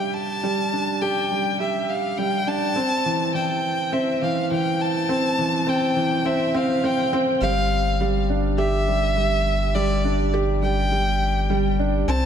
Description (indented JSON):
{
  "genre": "piano and strings electronica",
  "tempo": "103 BPM",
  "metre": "4/4",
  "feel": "straight",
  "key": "unclear",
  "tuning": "A4 = 440 Hz",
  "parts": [
    { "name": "warm violin", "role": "melody", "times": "0.0-12.3 s", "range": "D5 to A5", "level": "-24 LUFS", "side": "left 1 dB", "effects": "none" },
    { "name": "felt-muted upright piano", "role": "riff", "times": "0.0-12.2 s", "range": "E3 to G4", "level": "-23 LUFS", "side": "right 1 dB", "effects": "none" },
    { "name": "round analog bass", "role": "bass", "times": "7.4-12.3 s", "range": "G1 to C2", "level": "-23 LUFS", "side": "left 1 dB", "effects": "none" }
  ],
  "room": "moderate lush hall reverb, RT60 2.7 s",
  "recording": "dark, warm production, faint mains hum",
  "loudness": "-20 LUFS",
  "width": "side -8 dB against mid",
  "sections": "0.0-7.4 A section; 7.4-12.3 B section",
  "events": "build-up 0.0-7.4; drop 7.4-12.3",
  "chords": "0.0 G5; 2.8 C; 7.4 G5"
}